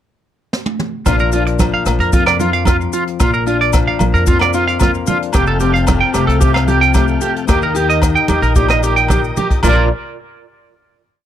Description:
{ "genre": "highlife guitar band", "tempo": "112 BPM", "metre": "4/4", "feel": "straight", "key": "Bb major", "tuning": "A4 = 440 Hz", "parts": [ { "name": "jazz brush drum kit", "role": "drums", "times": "0.5-9.8 s", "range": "crash cymbal, hi-hat, kick drum, rim click, snare drum, toms", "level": "-17 LUFS", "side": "equal", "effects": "none" }, { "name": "flamenco guitar", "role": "accompaniment", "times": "1.1-9.9 s", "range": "F2 to G4", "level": "-20 LUFS", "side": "left 10 dB", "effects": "none" }, { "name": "electric guitar at the edge of break-up", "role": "arpeggios", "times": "1.1-9.9 s", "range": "F4 to G5", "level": "-16 LUFS", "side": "right 4 dB", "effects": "harmonic tremolo, analog delay" }, { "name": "upright bass", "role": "bass", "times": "1.1-9.9 s", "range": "F1 to F2", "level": "-18 LUFS", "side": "equal", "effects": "none" }, { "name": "agogo bells", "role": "percussion", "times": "1.1-9.8 s", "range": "none", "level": "-26 LUFS", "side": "left 1 dB", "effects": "none" }, { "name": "congas", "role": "percussion", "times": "1.1-9.9 s", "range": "none", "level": "-21 LUFS", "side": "right 4 dB", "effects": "none" }, { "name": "maracas", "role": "percussion", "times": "1.1-9.9 s", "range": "none", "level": "-28 LUFS", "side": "left 21 dB", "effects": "none" }, { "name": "tonewheel organ", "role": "sustained chords", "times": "5.3-9.9 s", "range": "A4 to G5", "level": "-26 LUFS", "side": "left 3 dB", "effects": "chorus vibrato, wide subtle chorus" } ], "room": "little or no reverb", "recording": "none", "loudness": "-12 LUFS", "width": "side -10 dB against mid", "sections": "0.0-1.1 pickup bar; 1.1-9.6 groove; 9.6-11.3 final chord", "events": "drum fill 0.5-1.1", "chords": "0.0 N.C.; 1.1 Bb; 5.3 Fadd9; 7.5 Eb; 9.6 Bb" }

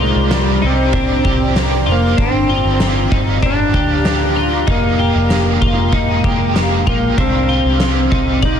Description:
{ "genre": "dream pop", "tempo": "96 BPM", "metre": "4/4", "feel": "straight", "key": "C minor", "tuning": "A4 = 442 Hz", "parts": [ { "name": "clean lap steel guitar", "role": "melody", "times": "0.0-8.6 s", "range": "G3 to Eb4", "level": "-18 LUFS", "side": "left 1 dB", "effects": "tape echo" }, { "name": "overdriven electric guitar", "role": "accompaniment", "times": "0.0-8.6 s", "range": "G2 to Ab4", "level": "-25 LUFS", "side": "right 7 dB", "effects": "tremolo, ensemble chorus" }, { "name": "shimmering ambient pad", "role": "sustained chords", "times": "0.0-8.6 s", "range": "Eb3 to C6", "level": "-22 LUFS", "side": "equal", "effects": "chorus, built-in reverb" }, { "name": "twelve-string electric guitar", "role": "arpeggios", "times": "0.0-8.6 s", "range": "D4 to D5", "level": "-22 LUFS", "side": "left 2 dB", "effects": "analog chorus, tape echo" }, { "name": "vintage muted fingered electric bass", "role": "bass", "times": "0.0-8.6 s", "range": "F1 to D2", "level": "-18 LUFS", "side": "equal", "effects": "none" }, { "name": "oversized low-tuned drum kit", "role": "drums", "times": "0.3-8.6 s", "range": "kick drum, ride cymbal, snare drum, tambourine", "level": "-19 LUFS", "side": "equal", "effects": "none" } ], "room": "light reverb, small room ambience", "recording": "dense, heavily limited modern master", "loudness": "-12 LUFS", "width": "side -8 dB against mid", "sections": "0.0-8.6 A section", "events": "none", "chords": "0.0 Cm9; 2.2 Gm7; 4.7 Fm11; 7.2 Cm9" }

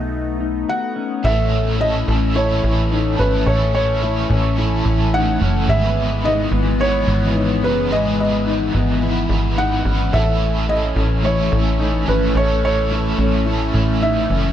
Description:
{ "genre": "dream pop", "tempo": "108 BPM", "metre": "4/4", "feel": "straight", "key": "A lydian", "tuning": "A4 = 440 Hz", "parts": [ { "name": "phased analog pad", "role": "sustained chords", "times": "0.0-14.5 s", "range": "E3 to D#4", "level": "-23 LUFS", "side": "left 1 dB", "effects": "phaser, chorus" }, { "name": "mellow electric guitar", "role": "arpeggios", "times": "0.0-14.5 s", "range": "B3 to A4", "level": "-26 LUFS", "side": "left 5 dB", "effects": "wide subtle chorus, digital delay" }, { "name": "plucky analog bass", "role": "bass", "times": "0.0-14.5 s", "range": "F#1 to B1", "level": "-19 LUFS", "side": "equal", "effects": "none" }, { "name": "felt-muted upright piano", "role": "melody", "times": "0.7-14.5 s", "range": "B4 to F#5", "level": "-22 LUFS", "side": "right 1 dB", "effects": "digital delay" }, { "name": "biting overdriven guitar", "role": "accompaniment", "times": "1.2-14.5 s", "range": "G#2 to B4", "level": "-25 LUFS", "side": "right 2 dB", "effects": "tremolo, ensemble chorus" } ], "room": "moderate concert hall reverb, RT60 2.4 s", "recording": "dark, warm production", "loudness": "-16 LUFS", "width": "side -10 dB against mid", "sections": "0.0-1.2 A section; 1.2-14.5 B section", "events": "none", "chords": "0.0 B7; 1.2 A; 5.7 Emaj7; 10.1 A" }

